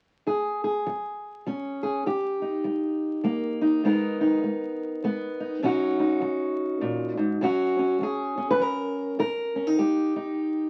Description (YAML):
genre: folk, solo fingerstyle acoustic guitar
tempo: 101 BPM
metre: 3/4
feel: swing 61% on 8ths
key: unclear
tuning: A4 = 440 Hz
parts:
  - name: fingerpicked steel-string acoustic guitar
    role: solo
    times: 0.3-10.7 s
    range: F#2 to B4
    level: -26 LUFS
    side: equal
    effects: none
room: moderate studio reverb, RT60 0.5 s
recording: very old 78 rpm record, vinyl crackle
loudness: -26 LUFS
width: mono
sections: 0.3-7.4 A section; 7.4-10.7 B section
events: none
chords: 0.3 F#sus2; 2.0 D#/G; 3.8 G#madd9; 5.6 Badd9; 7.4 F#5; 9.2 D#/G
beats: | 0.26 0.86 1.45 | 2.05 2.65 3.24 | 3.84 4.43 5.03 | 5.62 6.22 6.81 | 7.41 8.00 8.60 | 9.20 9.79 10.39